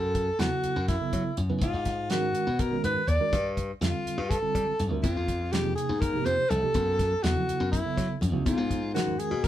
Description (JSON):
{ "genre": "electric jazz fusion", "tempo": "246 BPM (eighths)", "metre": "7/8", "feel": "straight", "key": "unclear", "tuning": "A4 = 440 Hz", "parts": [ { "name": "clear alto saxophone", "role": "melody", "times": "0.0-9.5 s", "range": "Fb4 to D5", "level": "-29 LUFS", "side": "equal", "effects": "none" }, { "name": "glassy slap bass", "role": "bass", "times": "0.0-9.5 s", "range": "C2 to G3", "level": "-30 LUFS", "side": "left 1 dB", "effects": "none" }, { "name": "damped 70s drum kit", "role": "drums", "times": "0.1-9.5 s", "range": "hi-hat, kick drum, snare drum", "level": "-31 LUFS", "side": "equal", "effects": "none" }, { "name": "mellow reed electric piano", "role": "accompaniment", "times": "0.4-9.3 s", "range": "C3 to B4", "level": "-33 LUFS", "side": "right 5 dB", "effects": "fast tremolo" }, { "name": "congas", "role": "percussion", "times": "5.0-9.4 s", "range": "none", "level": "-35 LUFS", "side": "left 2 dB", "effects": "none" } ], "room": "moderate studio reverb, RT60 0.6 s", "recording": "band playing live in one room", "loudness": "-25 LUFS", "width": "side -12 dB against mid", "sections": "0.0-9.5 A section", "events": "none", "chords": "0.0 Gbm7; 1.6 Abm9; 3.3 G7sus2; 5.0 Fm9; 6.7 Gbm7; 8.5 Abm9" }